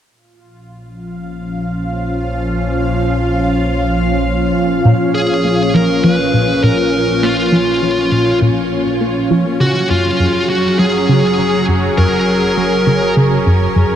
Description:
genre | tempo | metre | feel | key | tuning
ambient, sequencer-driven space music | 101 BPM | 4/4 | straight | unclear | A4 = 440 Hz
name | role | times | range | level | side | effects
sweeping resonant pad | sustained chords | 0.1-14.0 s | A#2 to A#5 | -16 LUFS | equal | chorus
analog drone | bass | 1.3-14.0 s | F#1 to A#1 | -26 LUFS | equal | chorus
bubbling stepped-filter texture | texture | 0.1-14.0 s | C#4 to E#5 | -26 LUFS | right 2 dB | chorus, built-in reverb
tight sequenced synth | riff | 4.9-13.8 s | F#2 to A#3 | -16 LUFS | equal | chorus, phaser, cassette tape, tape echo
high-gain lead guitar | melody | 5.1-13.1 s | E#4 to B4 | -16 LUFS | left 1 dB | distortion, tape echo
room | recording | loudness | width
wet huge ambient reverb, RT60 8.3 s | none | -12 LUFS | side -10 dB against mid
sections
0.1-4.9 A section; 4.9-14.0 B section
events
fade-in on synth drone 0.1-4.9, 4.9-14.0; fade-in on synth texture 0.1-4.9; filter sweep on analog synth pad 0.1-4.9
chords
0.1 A#m; 9.6 F#add9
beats
| 0.10 0.69 1.29 1.88 | 2.48 3.07 3.66 4.26 | 4.85 5.45 6.04 6.63 | 7.23 7.82 8.42 9.01 | 9.60 10.20 10.79 11.39 | 11.98 12.57 13.17 13.76

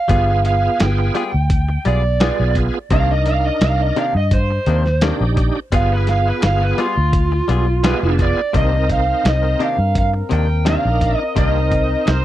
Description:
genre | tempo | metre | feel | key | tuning
straight-eighth soul blues | 85 BPM | 4/4 | straight | C minor | A4 = 439 Hz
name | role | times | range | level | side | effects
overdriven slide guitar | melody | 0.0-12.2 s | F4 to G5 | -20 LUFS | right 2 dB | none
bright tonewheel organ | accompaniment | 0.1-12.2 s | B3 to Bb4 | -23 LUFS | right 4 dB | slow rotary speaker, overdrive, chorus vibrato
direct-recorded clean electric guitar | stabs | 0.1-12.1 s | C3 to Ab4 | -24 LUFS | left 7 dB | none
vintage muted fingered electric bass | bass | 0.1-12.2 s | F1 to G2 | -18 LUFS | equal | none
dusty soul sampler-style drum kit | drums | 0.1-12.2 s | hi-hat, kick drum, snare drum | -19 LUFS | equal | none
warm horn section | sustained chords | 8.5-12.2 s | C4 to Bb4 | -30 LUFS | left 5 dB | none
room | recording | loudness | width
little or no reverb | dry, close 1970s-style studio recording | -14 LUFS | side -13 dB against mid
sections
0.0-8.5 A section; 8.5-12.2 B section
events
electric slide guitar solo 0.0-8.5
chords
0.1 G7b9; 2.9 Cm9; 5.7 G7b9; 8.5 Cm9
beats
| 0.09 0.80 1.50 2.20 | 2.91 3.61 4.32 5.02 | 5.73 6.43 7.13 7.84 | 8.54 9.25 9.95 10.66 | 11.36 12.07

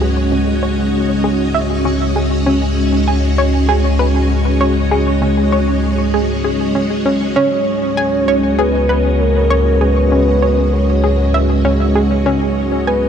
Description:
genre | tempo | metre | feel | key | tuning
ambient | 98 BPM | 4/4 | straight | unclear | A4 = 440 Hz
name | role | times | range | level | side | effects
string machine, full ensemble | sustained chords | 0.0-13.1 s | G#3 to D#5 | -16 LUFS | equal | ensemble chorus
analog pluck | riff | 0.0-13.0 s | C#4 to G#5 | -20 LUFS | equal | chorus, tape echo
analog drone | bass | 0.0-13.1 s | C#2 | -17 LUFS | equal | chorus
soft octave-layered synth lead | melody | 7.4-13.1 s | A#4 to C#5 | -18 LUFS | equal | chorus, tape echo
room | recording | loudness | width
wet huge ambient reverb, RT60 8.6 s | none | -12 LUFS | side -8 dB against mid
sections
0.0-13.1 A section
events
none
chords
0.0 C#7(no3)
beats
| 0.02 0.63 1.24 1.85 | 2.46 3.08 3.69 4.30 | 4.91 5.53 6.14 6.75 | 7.36 7.97 8.59 9.20 | 9.81 10.42 11.04 11.65 | 12.26 12.87

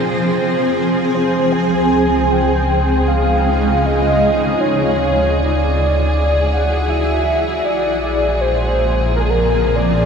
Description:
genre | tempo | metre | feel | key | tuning
ambient | 78 BPM | 4/4 | straight | unclear | A4 = 440 Hz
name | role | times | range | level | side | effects
warm velvety synth lead | melody | 0.0-10.1 s | Ab4 to Ab5 | -19 LUFS | equal | chorus, shimmer reverb, tape echo
granular cloud pad | sustained chords | 0.0-10.1 s | Bb2 to D5 | -17 LUFS | equal | built-in reverb, analog chorus, shimmer reverb
muted studio violin section | texture | 0.0-10.1 s | Ab4 | -25 LUFS | left 1 dB | shimmer reverb
warm sub bass | bass | 1.5-10.1 s | Bb1 to D2 | -20 LUFS | equal | none
bowed-like drone | drone | 5.4-10.1 s | Db3 to Ab3 | -35 LUFS | equal | none
room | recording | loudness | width
wet huge ambient reverb, RT60 7.1 s | dreamy mix soaked in reverb | -14 LUFS | side -6 dB against mid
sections
0.0-1.5 A section; 1.5-10.1 B section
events
none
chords
0.0 Fm; 1.5 Db; 4.6 Dmaj7; 7.6 Bb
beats
0.74 | 1.53 2.30 3.07 3.84 | 4.61 5.37 6.13 6.89 | 7.65 8.40 9.16 9.93

